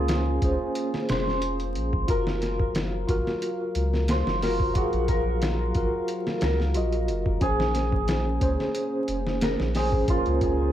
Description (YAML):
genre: trip hop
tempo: 90 BPM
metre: 4/4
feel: swing 53% on 16ths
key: Bb minor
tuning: A4 = 440 Hz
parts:
  - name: santur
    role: melody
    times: 0.0-10.7 s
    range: F4 to C5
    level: -30 LUFS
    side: equal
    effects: tape echo
  - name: tine electric piano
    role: accompaniment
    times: 0.0-10.7 s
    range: Db4 to F5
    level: -29 LUFS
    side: equal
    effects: tremolo, vintage 12-bit sampler grit, tape echo
  - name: dark analog pad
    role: sustained chords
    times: 0.0-10.7 s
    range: Gb3 to F5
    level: -35 LUFS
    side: equal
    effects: chorus
  - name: round analog bass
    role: bass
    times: 0.0-10.7 s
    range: F1 to Db2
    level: -27 LUFS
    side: equal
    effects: none
  - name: trip hop sampler-style drum kit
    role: drums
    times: 0.1-10.6 s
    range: hi-hat, kick drum, snare drum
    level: -28 LUFS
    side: equal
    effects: overdrive
room: light reverb, digital ambience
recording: vinyl crackle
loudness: -23 LUFS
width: side -11 dB against mid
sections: 0.0-10.7 A section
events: none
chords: 0.0 Bbm9; 2.1 Gbmaj7; 7.4 Bbm9